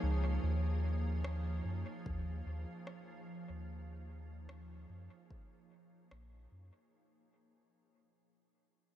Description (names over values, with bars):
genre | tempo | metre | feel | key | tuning
ambient dub | 74 BPM | 4/4 | swing 54% on 16ths | unclear | A4 = 438 Hz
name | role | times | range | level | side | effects
soft additive organ-like pad | sustained chords | 0.0-6.9 s | F3 to Db5 | -44 LUFS | right 2 dB | ensemble chorus, built-in reverb
soft dub sub bass | bass | 0.0-6.7 s | Bb1 to Gb2 | -38 LUFS | equal | tube saturation
electronic rim click | drums | 1.2-6.3 s | none | -54 LUFS | left 1 dB | overdrive, dub echo
electronic kick drum | drums | 2.1-5.5 s | none | -49 LUFS | equal | none
room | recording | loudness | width
light reverb, digital ambience | nothing above 11.0 kHz | -37 LUFS | side -13 dB against mid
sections
0.0-6.9 A section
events
fade-out 0.0-6.9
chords
0.4 Eb7(no3)